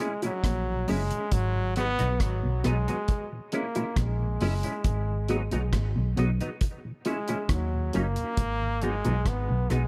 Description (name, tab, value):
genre	roots reggae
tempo	68 BPM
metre	4/4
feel	straight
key	G# minor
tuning	A4 = 440 Hz
part	brilliant trombone	melody	0.0-9.9 s	F#3 to B3	-34 LUFS	equal	tape echo
part	mellow tonewheel organ	accompaniment	0.0-9.8 s	D#2 to G#4	-39 LUFS	equal	slow rotary speaker, tape echo
part	semi-hollow electric guitar	accompaniment	0.0-9.8 s	F#3 to E4	-38 LUFS	equal	ensemble chorus, tape echo
part	deep reggae drum kit	drums	0.2-9.9 s	hi-hat, kick drum, rim click	-32 LUFS	equal	none
part	bongos	percussion	0.2-9.2 s	none	-36 LUFS	equal	none
part	mellow electric guitar	riff	0.4-9.8 s	F#2 to D#3	-37 LUFS	equal	none
part	vintage muted fingered electric bass	bass	0.4-9.9 s	F#1 to D#2	-30 LUFS	equal	none
room	little or no reverb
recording	echo-heavy mix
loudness	-28 LUFS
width	mono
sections	0.0-8.4 A section; 8.4-9.9 B section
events	trombone solo 0.0-8.4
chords	0.0 A#m7b5; 1.3 G#m7; 3.1 A#m7b5; 4.8 G#m7; 6.6 A#m7b5; 7.5 D#m7; 8.4 G#m7